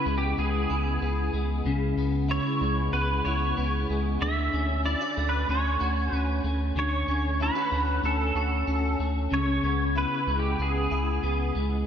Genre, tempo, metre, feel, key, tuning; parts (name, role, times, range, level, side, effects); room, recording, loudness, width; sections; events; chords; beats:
dream pop; 94 BPM; 4/4; straight; A4 = 440 Hz
pedal steel guitar; melody; 0.0-11.5 s; G4 to E5; -29 LUFS; right 2 dB; ensemble chorus, ping-pong delay
clean electric guitar; arpeggios; 0.0-11.9 s; C#3 to F#4; -29 LUFS; left 2 dB; ensemble chorus, ping-pong delay
warm sub bass; bass; 0.1-11.8 s; C#2 to D2; -28 LUFS; equal
wet lush hall reverb, RT60 3.0 s; dreamy mix soaked in reverb; -24 LUFS; side -8 dB against mid
0.0-11.9 A section
0.0 C#m7; 4.2 Dmaj7; 9.3 C#m7
0.38 1.02 | 1.66 2.30 2.93 3.57 | 4.21 4.85 5.49 6.13 | 6.76 7.40 8.04 8.68 | 9.32 9.96 10.59 11.23